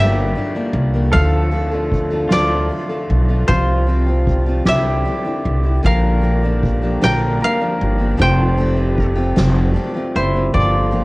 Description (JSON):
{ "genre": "acoustic folk duo or small band", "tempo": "51 BPM (dotted quarters)", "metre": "6/8", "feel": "straight", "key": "F major", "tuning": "A4 = 440 Hz", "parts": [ { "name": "koto", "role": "melody", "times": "0.0-11.0 s", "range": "C5 to G5", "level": "-22 LUFS", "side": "equal", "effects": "cassette tape" }, { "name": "pedal steel guitar", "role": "second line", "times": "0.0-11.0 s", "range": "E4 to C5", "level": "-25 LUFS", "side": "right 1 dB", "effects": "cassette tape" }, { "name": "picked steel-string acoustic guitar", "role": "accompaniment", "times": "0.0-11.0 s", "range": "G2 to Bb4", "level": "-22 LUFS", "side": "left 1 dB", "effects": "cassette tape" }, { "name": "pedal harmonium", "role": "sustained chords", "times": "0.0-11.0 s", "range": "C3 to G4", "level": "-27 LUFS", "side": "equal", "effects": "cassette tape" }, { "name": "upright bass", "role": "bass", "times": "0.0-11.0 s", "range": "F1 to D2", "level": "-17 LUFS", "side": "equal", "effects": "none" }, { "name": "soft-mallet drum kit", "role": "drums", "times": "0.3-11.0 s", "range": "kick drum, ride cymbal, snare drum", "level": "-23 LUFS", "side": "equal", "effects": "none" } ], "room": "small room reverb", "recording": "home recording on cassette", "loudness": "-14 LUFS", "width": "side -23 dB against mid", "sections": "0.0-11.0 A section", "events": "none", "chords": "0.0 Gm; 1.1 Dm; 3.5 Csus4; 4.7 Cadd9; 5.8 Bb6; 8.2 Fadd9", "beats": "| 1.14 2.31 | 3.49 4.67 | 5.85 7.02 | 8.20 9.38 | 10.55" }